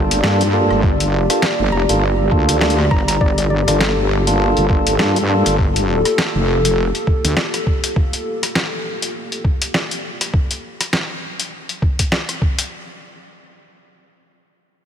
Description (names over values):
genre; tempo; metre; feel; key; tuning
glitch hop; 101 BPM; 4/4; swing 58% on 16ths; G minor; A4 = 441 Hz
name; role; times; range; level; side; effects
woody wave-folded pluck; melody; 0.0-3.8 s; D5 to Bb5; -26 LUFS; left 2 dB; chorus, ping-pong delay
dark analog pad; sustained chords; 0.0-10.3 s; Bb3 to D5; -22 LUFS; left 1 dB; chorus, sidechain pumping
tonewheel organ; stabs; 0.0-5.6 s; Bb3 to A4; -21 LUFS; equal; stopped rotary speaker, sidechain pumping, ping-pong delay
wobble bass; bass; 0.0-7.3 s; F1 to G2; -18 LUFS; equal; chorus, tube saturation
granular cloud pad; texture; 0.0-8.0 s; F4; -32 LUFS; equal; none
boom bap sampler-style drum kit; drums; 0.1-12.7 s; hi-hat, rim click, snare drum; -21 LUFS; left 1 dB; small room ambience
electronic kick drum; drums; 0.8-12.6 s; none; -18 LUFS; equal; small room ambience
room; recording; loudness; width
moderate huge ambient reverb, RT60 3.9 s; dreamy mix soaked in reverb; -15 LUFS; side -8 dB against mid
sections
0.0-12.7 A section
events
drop 0.0-12.7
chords
0.0 Gm9